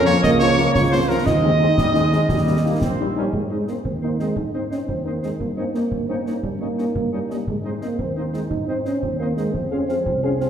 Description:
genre	military-style march for wind band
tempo	116 BPM (dotted quarters)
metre	6/8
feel	straight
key	Ab major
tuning	A4 = 440 Hz
part	clear cornet	melody	0.0-10.5 s	Bb4 to F5	-26 LUFS	right 2 dB	none
part	mellow euphonium	second line	0.0-10.5 s	G3 to F4	-24 LUFS	right 2 dB	none
part	mellow woodwind section	second line	0.0-10.5 s	Eb4 to F5	-29 LUFS	right 1 dB	none
part	piccolo	second line	0.0-2.8 s	Bb5 to Eb6	-28 LUFS	left 2 dB	none
part	warm trombone section	sustained chords	0.0-3.2 s	F3 to Db4	-28 LUFS	right 3 dB	none
part	mellow tuba	bass	0.0-10.4 s	Bb1 to Ab2	-24 LUFS	right 1 dB	none
part	warm French horn section	accompaniment	0.1-10.5 s	F3 to Ab4	-27 LUFS	left 4 dB	none
part	concert snare drum, concert bass drum and clash cymbals	drums	0.1-10.5 s	none	-28 LUFS	left 1 dB	none
room	wet recital hall reverb, RT60 1.7 s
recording	recorded in a church or concert hall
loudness	-18 LUFS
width	side -8 dB against mid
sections	0.0-3.3 A section; 3.3-10.5 B section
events	none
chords	0.2 Bbm/Db; 1.3 Ab/Eb; 2.3 Eb; 3.3 Ab; 5.4 Eb7/G; 7.5 Ab; 9.5 Fm

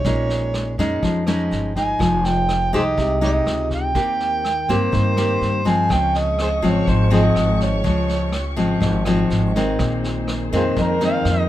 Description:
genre	bossa nova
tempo	123 BPM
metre	4/4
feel	straight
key	unclear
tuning	A4 = 443 Hz
part	overdriven harmonica	melody	0.0-11.5 s	F4 to Ab5	-22 LUFS	right 2 dB	none
part	nylon-string guitar	accompaniment	0.0-11.5 s	F2 to G4	-20 LUFS	left 2 dB	none
part	upright bass	bass	0.0-11.5 s	F1 to G2	-23 LUFS	equal	none
part	vintage brush drum kit	drums	0.0-11.4 s	kick drum, rim click, snare drum	-28 LUFS	equal	none
part	dark symphonic string section	sustained chords	5.9-11.5 s	Ab3 to Db6	-31 LUFS	left 1 dB	none
room	little or no reverb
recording	minimal, uncompressed stereo recording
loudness	-17 LUFS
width	side -13 dB against mid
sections	0.0-11.5 A section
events	none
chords	0.0 Bbm7; 2.0 Fm9; 4.0 Cm7/Eb; 5.9 Dbmaj7; 9.8 Bb9sus4

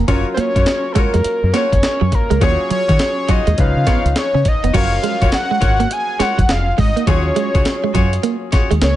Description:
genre	R&B, new jack swing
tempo	103 BPM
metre	4/4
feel	swing 64% on 16ths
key	F# major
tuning	A4 = 440 Hz
part	clear grand piano	accompaniment	0.0-9.0 s	E#3 to A#5	-27 LUFS	left 3 dB	none
part	direct-recorded clean electric guitar	riff	0.0-8.9 s	F#3 to C#4	-22 LUFS	right 8 dB	analog chorus
part	deep dub fingered electric bass	bass	0.0-9.0 s	E#1 to D#3	-17 LUFS	equal	none
part	mellow horn section	stabs	0.1-8.7 s	D#4 to C#5	-25 LUFS	left 4 dB	none
part	breakbeat sampler-style drum kit	drums	0.1-9.0 s	crash cymbal, hi-hat, kick drum, snare drum	-18 LUFS	equal	none
part	fat analog lead	melody	0.3-9.0 s	A4 to G#5	-19 LUFS	left 1 dB	chorus, ping-pong delay
room	light reverb, digital ambience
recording	nothing above 10.4 kHz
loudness	-13 LUFS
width	side -13 dB against mid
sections	0.0-4.7 A section; 4.7-9.0 B section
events	none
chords	0.1 F#maj7; 2.4 D#m11; 3.6 C#9; 4.7 F#maj7; 7.1 D#m11

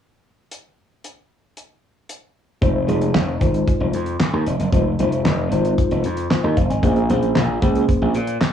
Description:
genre	early-eighties boogie funk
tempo	114 BPM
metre	4/4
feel	straight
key	unclear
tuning	A4 = 439 Hz
part	damped 70s drum kit	drums	0.5-8.5 s	handclaps, hi-hat, kick drum, snare drum	-20 LUFS	equal	cassette tape
part	mellow tine electric piano	accompaniment	2.6-8.2 s	Ab3 to Ab5	-22 LUFS	left 1 dB	medium stereo tremolo, cassette tape
part	gritty slap bass	bass	2.6-8.4 s	F1 to Bb2	-20 LUFS	equal	overdrive
room	light reverb, small room ambience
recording	home recording on cassette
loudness	-16 LUFS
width	side -9 dB against mid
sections	0.5-2.6 A section; 2.6-8.5 B section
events	none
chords	0.5 N.C.; 2.6 Fm7; 6.8 Bbm9

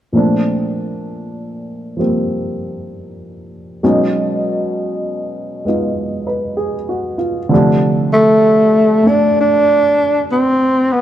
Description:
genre	jazz ballad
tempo	65 BPM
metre	4/4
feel	swing 66% on 8ths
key	unclear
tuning	A4 = 437 Hz
part	dark baby grand piano	accompaniment	0.1-11.0 s	Bb2 to B4	-17 LUFS	equal	none
part	growling tenor saxophone	melody	8.1-11.0 s	A3 to D4	-10 LUFS	equal	none
room	moderate echo chamber reverb, RT60 2.2 s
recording	none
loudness	-12 LUFS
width	side -11 dB against mid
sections	0.1-7.5 A section; 7.5-11.0 B section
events	none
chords	0.1 Bbmaj9; 3.8 B69; 7.5 F6/C

